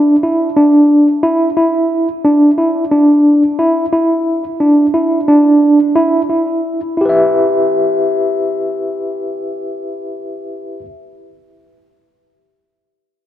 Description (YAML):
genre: progressive instrumental, progressive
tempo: 178 BPM (eighths)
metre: 7/8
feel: straight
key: E minor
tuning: A4 = 440 Hz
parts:
  - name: overdriven tine electric piano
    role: solo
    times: 0.0-10.8 s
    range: D4 to E5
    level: -11 LUFS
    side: equal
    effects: medium tremolo, analog delay
room: wet lush hall reverb, RT60 2.4 s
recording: rough home demo mix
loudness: -10 LUFS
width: side -12 dB against mid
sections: 0.0-7.0 A section; 7.0-9.3 B section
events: none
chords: 0.0 Dsus2; 7.0 Em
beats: 0.23 0.57 0.91 1.24 1.58 1.92 | 2.25 2.59 2.93 3.26 3.60 3.94 4.27 | 4.61 4.95 5.28 5.62 5.96 6.29 6.63 | 6.97 7.30 7.64 7.98 8.31 8.65 8.99